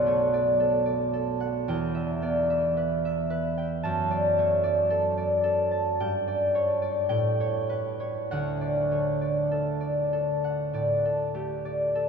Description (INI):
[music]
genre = classical, solo harp piece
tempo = 49-57 BPM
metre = 4/4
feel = rubato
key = D major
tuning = A4 = 440 Hz
[part]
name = concert harp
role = solo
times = 0.0-12.1 s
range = B1 to A5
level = -24 LUFS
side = equal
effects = none
[sound]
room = wet cathedral reverb, RT60 5.5 s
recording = minimal, uncompressed stereo recording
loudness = -24 LUFS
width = side -6 dB against mid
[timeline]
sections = 0.0-12.1 A section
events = none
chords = 0.0 Bm7; 1.7 Em; 3.9 D/F#; 6.0 G5; 7.1 A7; 8.3 D